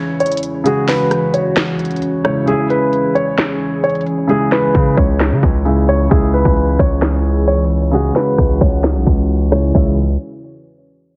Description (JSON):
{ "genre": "hip hop, trap", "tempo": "132 BPM", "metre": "4/4", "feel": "half-time", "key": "C# minor", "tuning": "A4 = 440 Hz", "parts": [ { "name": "dark concert grand piano", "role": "melody", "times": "0.0-10.0 s", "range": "G#4 to C#5", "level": "-21 LUFS", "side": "equal", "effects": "none" }, { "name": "dark concert grand piano", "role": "accompaniment", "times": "0.0-10.0 s", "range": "C#3 to F#4", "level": "-22 LUFS", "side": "equal", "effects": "none" }, { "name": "dark analog pad", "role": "sustained chords", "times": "0.0-10.0 s", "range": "E3 to G#4", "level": "-25 LUFS", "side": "equal", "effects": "chorus, phaser" }, { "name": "trap drum kit", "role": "drums", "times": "0.2-9.9 s", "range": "crash cymbal, finger snaps, hi-hat, kick drum, rim click, snare drum", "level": "-19 LUFS", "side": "equal", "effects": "none" }, { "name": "distorted 808-style bass", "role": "bass", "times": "4.7-10.2 s", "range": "B1 to C#3", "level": "-18 LUFS", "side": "equal", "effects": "distortion" } ], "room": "light reverb, digital ambience", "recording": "heavily compressed radio sound, low-pass filter", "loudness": "-15 LUFS", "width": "mono", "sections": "0.0-9.7 A section; 9.7-11.2 B section", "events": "break 0.0-2.5; filter sweep 0.0-9.7; kick muted 2.5-3.4", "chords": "0.0 C#m" }